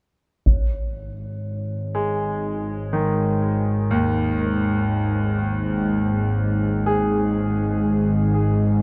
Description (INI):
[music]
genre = dark ambient drone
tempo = 61 BPM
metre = 4/4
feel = straight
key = unclear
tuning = A4 = 439 Hz
[part]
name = bowed-like drone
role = drone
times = 1.0-8.8 s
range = G#1 to G#2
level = -23 LUFS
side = equal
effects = built-in reverb
[part]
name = taiko ensemble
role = percussion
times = 0.5-0.7 s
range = none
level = -22 LUFS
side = equal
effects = low-pass filter on perc
[part]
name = bronze singing bowl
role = texture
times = 0.5-8.8 s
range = C#5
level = -44 LUFS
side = equal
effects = none
[part]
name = bright grand piano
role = arpeggios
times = 1.9-8.8 s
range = D#2 to G#4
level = -27 LUFS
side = equal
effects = tape echo
[sound]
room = moderate huge ambient reverb, RT60 7.9 s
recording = none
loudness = -22 LUFS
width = mono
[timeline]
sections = 0.5-8.8 A section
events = fade-in on singing bowl 0.5-8.8; filter sweep on synth drone 0.5-8.8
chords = 0.5 G#5